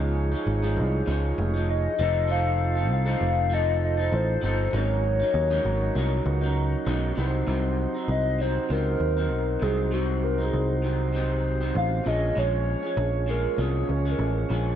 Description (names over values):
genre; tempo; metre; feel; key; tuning
indie pop, bedroom pop; 98 BPM; 4/4; swing 55% on 16ths; unclear; A4 = 442 Hz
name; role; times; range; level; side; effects
electric guitar through a small old amp; accompaniment; 0.0-14.8 s; Ab2 to A4; -32 LUFS; left 3 dB; wide subtle chorus, vibrato effect
mellow tonewheel organ; accompaniment; 0.0-14.8 s; C4 to Db5; -31 LUFS; right 5 dB; slow rotary speaker
picked electric bass; bass; 0.0-14.8 s; F1 to Eb2; -25 LUFS; equal; none
warbly nostalgic lead; melody; 1.7-14.4 s; Gb4 to F5; -28 LUFS; left 2 dB; wide subtle chorus, tape echo
room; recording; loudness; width
light reverb; dark, warm production, nothing above 10.9 kHz; -23 LUFS; side -10 dB against mid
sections
0.0-7.2 A section; 7.2-14.8 B section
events
soft synth lead solo 7.2-14.8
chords
0.0 Dbadd9; 2.0 F7; 4.7 Ab7sus4; 7.2 Cdim; 12.1 Bbm7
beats
0.46 1.07 1.68 | 2.29 2.90 3.51 4.12 | 4.73 5.34 5.95 6.56 | 7.17 7.79 8.39 9.01 | 9.62 10.23 10.84 11.45 | 12.06 12.67 13.28 13.89 | 14.50